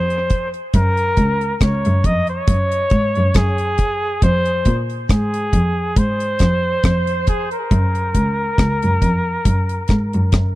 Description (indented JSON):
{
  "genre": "dub reggae",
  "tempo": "69 BPM",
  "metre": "4/4",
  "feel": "swing 55% on 16ths",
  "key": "unclear",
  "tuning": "A4 = 440 Hz",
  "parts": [
    { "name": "clear flugelhorn", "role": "melody", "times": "0.0-10.6 s", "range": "Ab4 to Eb5", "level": "-20 LUFS", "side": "equal", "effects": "dub echo" },
    { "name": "dark cello", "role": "bass", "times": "0.0-10.6 s", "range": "Db2 to Bb2", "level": "-18 LUFS", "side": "equal", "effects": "none" },
    { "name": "deep reggae drum kit", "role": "drums", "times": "0.1-10.6 s", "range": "hi-hat, kick drum, rim click", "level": "-17 LUFS", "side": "equal", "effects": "none" }
  ],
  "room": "little or no reverb",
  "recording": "dry, close 1970s-style studio recording",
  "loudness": "-15 LUFS",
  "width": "side -17 dB against mid",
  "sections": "0.0-10.6 A section",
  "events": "none",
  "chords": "0.0 F5; 0.7 Gb; 4.2 Fm; 7.7 Gb"
}